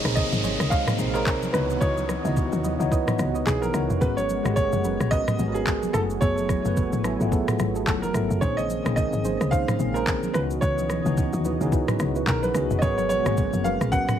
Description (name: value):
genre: amapiano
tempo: 109 BPM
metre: 4/4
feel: swing 58% on 16ths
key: unclear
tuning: A4 = 440 Hz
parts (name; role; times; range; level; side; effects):
- clear baby grand piano; melody; 0.0-14.2 s; Ab4 to Gb5; -28 LUFS; right 1 dB; digital delay
- tine electric piano; accompaniment; 0.0-14.2 s; C3 to Eb5; -28 LUFS; left 1 dB; medium stereo tremolo
- warm analog pad; sustained chords; 0.0-14.2 s; Cb3 to Ab5; -33 LUFS; left 1 dB; chorus, sidechain pumping
- soft round pluck; stabs; 0.0-14.2 s; Cb4 to Eb5; -33 LUFS; right 5 dB; chorus, digital delay
- woody log drum bass; bass; 0.0-14.1 s; F1 to Eb2; -28 LUFS; equal; none
- smooth R&B drum kit; drums; 0.0-14.2 s; handclaps, kick drum, rim click, shaker, toms; -27 LUFS; equal; none
- downlifter; sound effects; 0.0-4.0 s; none; -33 LUFS; right 1 dB; none
- congas; percussion; 0.2-14.2 s; none; -34 LUFS; left 3 dB; none
room: light reverb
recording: none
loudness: -21 LUFS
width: side -10 dB against mid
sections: 0.0-14.2 A section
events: none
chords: 0.0 Bbm11; 1.5 Dbm11; 4.0 Abm11; 5.9 Gbm11; 8.4 Bbm11; 10.3 Dbm11; 12.8 Abm11